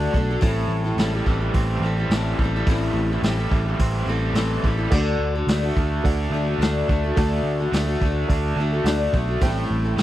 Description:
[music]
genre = folk rock and heartland rock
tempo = 107 BPM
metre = 4/4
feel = straight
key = A dorian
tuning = A4 = 440 Hz
[part]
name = picked steel-string acoustic guitar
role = accompaniment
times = 0.0-10.0 s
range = A2 to A4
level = -26 LUFS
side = left 4 dB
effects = none
[part]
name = raw garage guitar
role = riff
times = 0.0-10.0 s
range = A2 to F#4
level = -27 LUFS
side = right 3 dB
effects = overdrive, tremolo
[part]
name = picked electric bass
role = bass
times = 0.0-10.0 s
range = A1 to D2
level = -24 LUFS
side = equal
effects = none
[part]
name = vintage drum kit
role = drums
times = 0.1-10.0 s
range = crash cymbal, hi-hat, kick drum, snare drum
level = -23 LUFS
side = equal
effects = none
[part]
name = dark upright piano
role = accompaniment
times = 4.9-10.0 s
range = A4 to A5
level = -33 LUFS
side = right 8 dB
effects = none
[sound]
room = little or no reverb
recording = dry, close 1970s-style studio recording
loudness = -19 LUFS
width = side -14 dB against mid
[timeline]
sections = 0.0-10.0 A section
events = upright piano fill 8.3-9.4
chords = 0.4 Am7; 4.9 D; 9.4 Am7

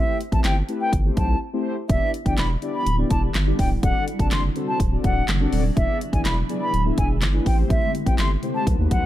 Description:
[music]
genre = dance-pop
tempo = 124 BPM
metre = 4/4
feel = straight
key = unclear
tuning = A4 = 440 Hz
[part]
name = silver concert flute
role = melody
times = 0.0-9.1 s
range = E5 to C6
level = -27 LUFS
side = equal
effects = tape echo
[part]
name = mellow synth brass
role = accompaniment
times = 0.0-9.1 s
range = A3 to E5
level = -28 LUFS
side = left 3 dB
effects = chorus, sidechain pumping
[part]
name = saturated sub bass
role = bass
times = 0.0-9.1 s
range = C#1 to D#2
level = -22 LUFS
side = equal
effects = sidechain pumping
[part]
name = pop drum kit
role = drums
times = 0.2-9.0 s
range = handclaps, hi-hat, kick drum, snare drum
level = -23 LUFS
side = equal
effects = none
[part]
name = granular cloud pad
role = sustained chords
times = 2.6-9.1 s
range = C3 to G4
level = -31 LUFS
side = equal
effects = built-in reverb, sidechain pumping
[sound]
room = digital ambience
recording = dark, warm production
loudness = -19 LUFS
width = side -13 dB against mid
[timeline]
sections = 0.0-9.1 A section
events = break 1.4-1.9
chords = 0.0 Am7; 1.9 Em7; 3.8 D7; 5.8 E7; 7.5 Am7

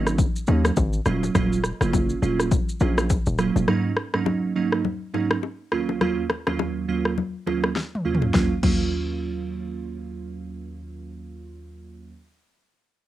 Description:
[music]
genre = afrobeats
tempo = 103 BPM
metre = 4/4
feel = swing 58% on 16ths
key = Eb minor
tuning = A4 = 440 Hz
[part]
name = glassy digital keys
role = accompaniment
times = 0.0-12.1 s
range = Eb2 to F4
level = -25 LUFS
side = right 4 dB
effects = chorus, cassette tape
[part]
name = hard-hitting 808-style bass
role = bass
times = 0.0-3.7 s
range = Eb1 to Eb2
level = -23 LUFS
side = left 1 dB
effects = none
[part]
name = deep house drum kit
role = drums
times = 0.1-8.8 s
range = crash cymbal, kick drum, rim click, shaker, snare drum, toms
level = -24 LUFS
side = left 1 dB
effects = overdrive, cassette tape
[part]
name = congas and bongos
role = percussion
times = 0.2-8.8 s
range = none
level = -30 LUFS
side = left 9 dB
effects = none
[sound]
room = light reverb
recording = home recording on cassette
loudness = -21 LUFS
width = side -13 dB against mid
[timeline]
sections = 0.0-8.3 A section; 8.3-10.7 B section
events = drum fill 7.8-8.3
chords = 0.0 Ab7sus4; 1.1 Ebm9; 3.7 Ab7sus4; 5.7 Ebm9

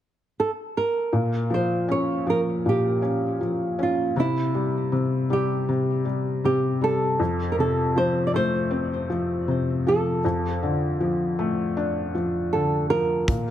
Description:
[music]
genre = pop ballad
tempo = 79 BPM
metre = 4/4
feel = straight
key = unclear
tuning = A4 = 440 Hz
[part]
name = flamenco guitar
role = melody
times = 0.4-13.5 s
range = E4 to D5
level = -25 LUFS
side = right 2 dB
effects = ping-pong delay
[part]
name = felt-muted upright piano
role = accompaniment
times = 1.1-13.5 s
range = F2 to D4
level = -23 LUFS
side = left 2 dB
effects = none
[part]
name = natural country drum kit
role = drums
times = 13.3-13.5 s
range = hi-hat, kick drum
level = -24 LUFS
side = equal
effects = none
[sound]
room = light reverb, small room ambience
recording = none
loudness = -21 LUFS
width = side -11 dB against mid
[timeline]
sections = 0.0-1.1 A section; 1.1-13.5 B section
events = none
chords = 0.0 N.C.; 1.1 Bbm; 4.2 C; 7.2 F; 10.2 Dm/F

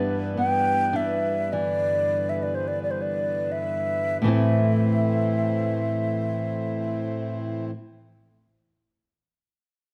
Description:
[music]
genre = celtic folk, Celtic slow air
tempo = 41-55 BPM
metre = 4/4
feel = rubato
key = A minor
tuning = A4 = 440 Hz
[part]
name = nylon-string guitar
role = accompaniment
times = 0.0-7.8 s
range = G2 to E4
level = -28 LUFS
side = equal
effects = none
[part]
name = pedal harmonium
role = sustained chords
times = 0.0-7.7 s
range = G2 to C4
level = -35 LUFS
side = equal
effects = none
[part]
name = breathy mellow concert flute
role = melody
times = 0.4-7.6 s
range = C5 to G5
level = -28 LUFS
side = equal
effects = none
[sound]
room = moderate recital hall reverb, RT60 1.5 s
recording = dark, warm production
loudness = -25 LUFS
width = mono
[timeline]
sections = 0.0-4.2 A section; 4.2-9.8 B section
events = slowing down 0.0-4.2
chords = 0.0 G6; 4.2 Am

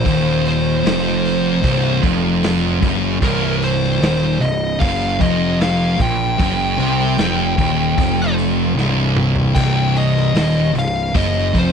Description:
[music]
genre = stoner and doom metal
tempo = 76 BPM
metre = 4/4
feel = straight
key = C minor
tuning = A4 = 439 Hz
[part]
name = fuzz lead guitar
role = melody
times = 0.0-11.7 s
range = Bb4 to G5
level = -21 LUFS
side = left 1 dB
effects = distortion, slapback echo
[part]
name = thick fuzz guitar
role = riff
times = 0.0-11.7 s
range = C2 to C3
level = -20 LUFS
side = left 12 dB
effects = distortion
[part]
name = thick fuzz guitar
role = riff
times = 0.0-11.7 s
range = C2 to C3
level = -19 LUFS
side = right 10 dB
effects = distortion
[part]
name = fuzz picked electric bass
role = bass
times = 0.0-11.7 s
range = C1 to C2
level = -22 LUFS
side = equal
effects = overdrive
[part]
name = raw garage drum kit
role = drums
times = 0.1-11.7 s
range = crash cymbal, hi-hat, kick drum, snare drum, toms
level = -22 LUFS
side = equal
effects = none
[sound]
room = little or no reverb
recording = dry, close 1970s-style studio recording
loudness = -14 LUFS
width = side -6 dB against mid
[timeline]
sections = 0.0-11.7 A section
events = drum fill 8.8-9.6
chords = 0.0 Cm

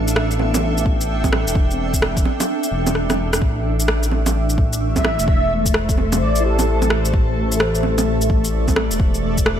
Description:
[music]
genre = future garage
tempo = 129 BPM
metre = 4/4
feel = swing 64% on 16ths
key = A minor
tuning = A4 = 440 Hz
[part]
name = granular cloud pad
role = sustained chords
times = 0.0-9.6 s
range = A3 to G5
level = -23 LUFS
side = equal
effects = built-in reverb, sidechain pumping
[part]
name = dark detuned saw bass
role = bass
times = 0.0-9.6 s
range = E1 to A1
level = -21 LUFS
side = equal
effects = tube saturation, sidechain pumping
[part]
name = electronic shaker, rim click and bongos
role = drums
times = 0.1-9.6 s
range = none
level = -22 LUFS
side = right 2 dB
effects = overdrive, small room ambience
[part]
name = muted felt-like synth keys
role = accompaniment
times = 0.4-3.4, 6.4-9.6 s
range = B3 to C5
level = -28 LUFS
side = left 3 dB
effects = chorus, sidechain pumping, ping-pong delay
[part]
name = electronic kick drum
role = drums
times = 0.9-9.4 s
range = none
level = -19 LUFS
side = equal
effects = overdrive, small room ambience
[part]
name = breathy flute-like synth lead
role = melody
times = 5.0-6.9 s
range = A4 to E5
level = -24 LUFS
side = equal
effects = ensemble chorus, ping-pong delay
[sound]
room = light reverb, digital ambience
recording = none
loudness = -16 LUFS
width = side -9 dB against mid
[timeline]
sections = 0.0-9.6 A section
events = drum fill 3.0-3.4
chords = 0.0 D7(no3); 3.4 Am7

